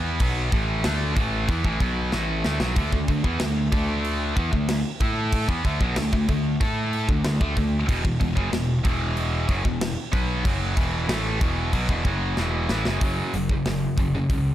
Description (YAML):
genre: heavy metal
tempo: 94 BPM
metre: 4/4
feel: straight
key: unclear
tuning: A4 = 438 Hz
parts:
  - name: heavy high-gain guitar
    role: riff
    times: 0.0-14.5 s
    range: E2 to A4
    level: -25 LUFS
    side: equal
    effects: distortion
  - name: fuzz picked electric bass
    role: bass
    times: 0.0-14.5 s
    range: E1 to A2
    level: -27 LUFS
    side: equal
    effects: overdrive
  - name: tight metal drum kit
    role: drums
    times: 0.2-14.4 s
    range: crash cymbal, hi-hat, kick drum, snare drum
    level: -26 LUFS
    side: equal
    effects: none
room: studio ambience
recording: dark, warm production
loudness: -21 LUFS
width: side -12 dB against mid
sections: 0.0-13.0 A section; 13.0-14.5 B section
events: drum fill 2.1-2.8, 12.4-13.0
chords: 0.0 A5; 2.8 D5; 7.9 E5; 13.0 F#5